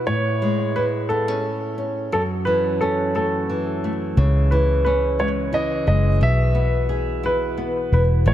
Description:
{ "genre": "six-eight pop ballad", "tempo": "59 BPM (dotted quarters)", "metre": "6/8", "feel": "straight", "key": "unclear", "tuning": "A4 = 440 Hz", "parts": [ { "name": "clear baby grand piano", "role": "melody", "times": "0.0-8.3 s", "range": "A4 to E5", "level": "-23 LUFS", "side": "right 1 dB", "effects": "analog delay" }, { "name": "flamenco guitar", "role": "accompaniment", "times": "0.0-8.3 s", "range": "F#2 to G#4", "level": "-24 LUFS", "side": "left 1 dB", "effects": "none" }, { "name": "vintage muted fingered electric bass", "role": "bass", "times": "4.2-8.3 s", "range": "E1 to C#2", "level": "-19 LUFS", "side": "equal", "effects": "none" } ], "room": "light reverb, studio reverb", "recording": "echo-heavy mix", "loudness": "-18 LUFS", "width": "side -12 dB against mid", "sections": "0.0-8.3 A section", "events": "none", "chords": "0.1 Amaj7; 2.1 F#m7; 4.2 C#m; 6.2 E/B", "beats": "| 0.08 1.10 | 2.13 3.15 | 4.17 5.20 | 6.22 7.25 | 8.27" }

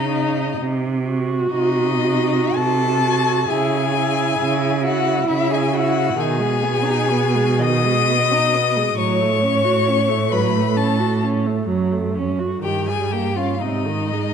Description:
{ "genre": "classical, slow romantic movement for string quartet", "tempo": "56-69 BPM", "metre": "3/4", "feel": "rubato", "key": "C# minor", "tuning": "A4 = 439 Hz", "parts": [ { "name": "warm violin", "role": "melody", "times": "0.0-14.3 s", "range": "D#5 to D#6", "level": "-24 LUFS", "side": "left 9 dB", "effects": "none" }, { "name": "clear violin", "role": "second line", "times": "0.0-14.3 s", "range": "D#4 to D#5", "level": "-23 LUFS", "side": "left 4 dB", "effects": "none" }, { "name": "rich viola", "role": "accompaniment", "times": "0.0-14.3 s", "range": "B#2 to F#4", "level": "-23 LUFS", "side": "right 3 dB", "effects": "none" }, { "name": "rich cello", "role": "bass", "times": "0.0-14.3 s", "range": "F#2 to C#3", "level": "-21 LUFS", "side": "right 4 dB", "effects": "none" } ], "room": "moderate concert hall reverb, RT60 2.1 s", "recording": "none", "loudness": "-17 LUFS", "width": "side -7 dB against mid", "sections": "0.0-14.3 A section", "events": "none", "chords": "0.0 Emaj7(no3)/C# (rootless); 0.6 Cdim7; 3.5 C#m; 6.2 G#m/B; 9.0 F#m/A; 11.7 F#m; 12.6 D#7/G; 13.6 G#", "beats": "| 0.58 1.52 2.55 | 3.50 4.40 5.29 | 6.18 7.10 8.08 | 8.98 9.87 10.76 | 11.69 12.63 13.61" }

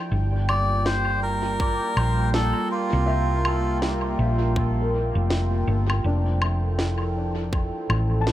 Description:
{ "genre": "ambient dub", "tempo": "81 BPM", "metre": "4/4", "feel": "swing 60% on 16ths", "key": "G dorian", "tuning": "A4 = 439 Hz", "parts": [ { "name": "warm analog pad", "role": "sustained chords", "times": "0.0-8.3 s", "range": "F3 to G5", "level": "-28 LUFS", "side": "equal", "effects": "chorus" }, { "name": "felt-muted upright piano", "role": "arpeggios", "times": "0.0-8.3 s", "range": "D4 to A5", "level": "-34 LUFS", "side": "left 2 dB", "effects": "low-pass filter, dub echo" }, { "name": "hollow-body short-scale fingered electric bass", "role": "bass", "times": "0.1-8.3 s", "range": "F1 to C2", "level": "-23 LUFS", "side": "equal", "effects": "tube saturation" }, { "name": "melodica", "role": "melody", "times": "0.5-3.8 s", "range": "F4 to D5", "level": "-28 LUFS", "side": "equal", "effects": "dub echo" }, { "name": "electronic woodblock and snare drum", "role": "drums", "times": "0.5-8.3 s", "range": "none", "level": "-31 LUFS", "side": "equal", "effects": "small room reverb, dub echo" }, { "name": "electronic kick drum", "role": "drums", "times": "1.6-7.7 s", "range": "none", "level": "-26 LUFS", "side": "equal", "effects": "small room reverb" } ], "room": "light reverb, digital ambience", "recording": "none", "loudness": "-21 LUFS", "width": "side -13 dB against mid", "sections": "0.0-8.3 A section", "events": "filter sweep on felt piano 0.0-8.3", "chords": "0.1 Gm7; 6.0 Fmaj9", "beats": "| 0.12 0.86 1.60 2.34 | 3.08 3.82 4.56 5.30 | 6.04 6.79 7.53 8.27" }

